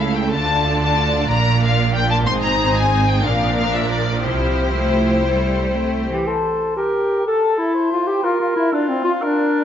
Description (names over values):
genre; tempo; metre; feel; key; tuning
cinematic, heroic adventure film score; 122 BPM (dotted quarters); 12/8; straight; C mixolydian; A4 = 441 Hz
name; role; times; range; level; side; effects
rich symphonic violin section; melody; 0.0-6.1 s; C5 to C6; -21 LUFS; left 4 dB; none
rich symphonic violin section; second line; 0.0-6.1 s; E4 to D5; -25 LUFS; left 2 dB; none
rich symphonic viola section; accompaniment; 0.0-6.1 s; F3 to E4; -25 LUFS; right 2 dB; none
clear symphonic cello section; bass; 0.0-6.3 s; Ab2 to A3; -22 LUFS; right 2 dB; none
rich symphonic double bass section; bass; 0.0-6.1 s; Ab1 to D2; -22 LUFS; right 3 dB; none
mellow hollow flute section; second line; 6.1-9.6 s; C5 to A5; -25 LUFS; left 2 dB; none
warm clarinet; second line; 6.1-9.6 s; C4 to A4; -18 LUFS; left 1 dB; none
mellow cor anglais; second line; 6.3-9.6 s; F4 to C5; -23 LUFS; right 1 dB; none
room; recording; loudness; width
wet scoring stage reverb, RT60 1.7 s; nothing above 7.7 kHz; -16 LUFS; side -9 dB against mid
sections
0.0-6.3 A section; 6.3-9.6 A section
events
none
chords
0.3 Dm; 1.3 Bb; 2.3 Ab; 3.3 Bb; 4.3 C6; 6.3 C5; 7.3 Am; 8.2 Bb5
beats
| 0.33 0.82 1.30 1.79 | 2.28 2.77 3.25 3.74 | 4.25 4.76 5.26 5.77 | 6.28 6.77 7.26 7.75 | 8.24 8.73 9.22